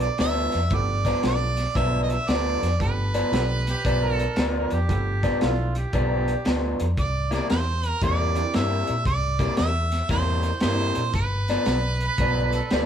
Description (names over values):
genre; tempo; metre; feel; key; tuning
electric blues shuffle; 115 BPM; 4/4; swing 65% on 8ths; G mixolydian; A4 = 440 Hz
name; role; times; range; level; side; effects
clear harmonica; melody; 0.0-12.9 s; B4 to E5; -28 LUFS; right 3 dB; overdrive
electric guitar through a small old amp; riff; 0.0-12.9 s; G2 to E4; -27 LUFS; left 2 dB; spring reverb
vintage muted fingered electric bass; bass; 0.0-12.9 s; G1 to Bb2; -26 LUFS; equal; none
crunchy breakbeat drum kit; drums; 0.0-12.9 s; hi-hat, kick drum, snare drum; -28 LUFS; equal; none
clear upright piano; accompaniment; 0.7-12.9 s; E3 to G4; -33 LUFS; right 6 dB; none
mellow harmonica; second line; 3.7-6.8, 12.0-12.9 s; F4 to B4; -31 LUFS; right 3 dB; overdrive
room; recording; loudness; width
moderate stone room reverb, RT60 1.2 s; band playing live in one room; -21 LUFS; side -8 dB against mid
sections
0.0-12.9 A section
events
none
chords
0.0 G7; 7.0 C7; 11.2 G7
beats
0.20 | 0.72 1.24 1.76 2.29 | 2.81 3.33 3.85 4.37 | 4.89 5.42 5.94 6.46 | 6.98 7.50 8.02 8.54 | 9.06 9.59 10.11 10.63 | 11.15 11.67 12.19 12.71